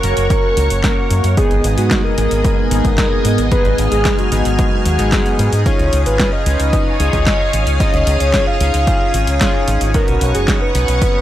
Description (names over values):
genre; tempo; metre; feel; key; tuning
italo disco; 112 BPM; 4/4; straight; unclear; A4 = 438 Hz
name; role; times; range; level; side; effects
soft octave-layered synth lead; melody; 0.0-11.2 s; F#4 to E#5; -20 LUFS; equal; chorus, analog delay
string machine, full ensemble; sustained chords; 0.0-11.2 s; B3 to E#6; -21 LUFS; equal; ensemble chorus
chorused polysynth; stabs; 0.0-11.2 s; G#3 to B4; -22 LUFS; left 1 dB; none
fingered electric bass with an envelope filter; bass; 0.0-11.0 s; F#1 to G#2; -16 LUFS; equal; none
house drum kit; drums; 0.0-11.1 s; handclaps, hi-hat, snare drum; -22 LUFS; equal; none
electronic kick drum; drums; 0.3-11.1 s; none; -17 LUFS; equal; none
room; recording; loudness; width
little or no reverb; dry, gritty hardware recording, transformer saturation; -12 LUFS; side -13 dB against mid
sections
0.0-11.2 A section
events
none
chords
0.0 F#; 1.4 G#m; 5.7 C#add9; 9.9 Badd9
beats
0.30 0.84 | 1.37 1.91 2.44 2.98 | 3.52 4.05 4.59 5.12 | 5.66 6.20 6.73 7.27 | 7.80 8.34 8.87 9.41 | 9.95 10.48 11.02